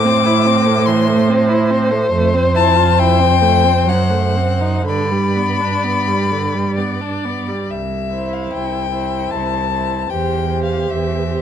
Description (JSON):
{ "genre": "classical, slow romantic movement for string quartet", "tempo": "58-77 BPM", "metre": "3/4", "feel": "rubato", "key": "C major", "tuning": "A4 = 442 Hz", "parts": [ { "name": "rich violin", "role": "melody", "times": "0.0-11.4 s", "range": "D5 to D6", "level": "-19 LUFS", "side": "left 11 dB", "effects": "none" }, { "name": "rich violin", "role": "second line", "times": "0.0-11.4 s", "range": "C5 to D5", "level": "-21 LUFS", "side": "left 1 dB", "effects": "none" }, { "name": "rich viola", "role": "accompaniment", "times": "0.0-11.4 s", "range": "D3 to G4", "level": "-21 LUFS", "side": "right 3 dB", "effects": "none" }, { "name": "rich cello", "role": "bass", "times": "0.0-11.4 s", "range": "C2 to A2", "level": "-18 LUFS", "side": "right 3 dB", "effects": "none" } ], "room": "moderate studio reverb, RT60 0.6 s", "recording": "dark, warm production", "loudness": "-14 LUFS", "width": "side -8 dB against mid", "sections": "0.0-7.7 A section; 7.7-11.4 B section", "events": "none", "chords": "0.0 Am; 2.1 Fmaj7; 3.9 F#dim7; 4.9 G; 7.7 C; 10.1 C/E" }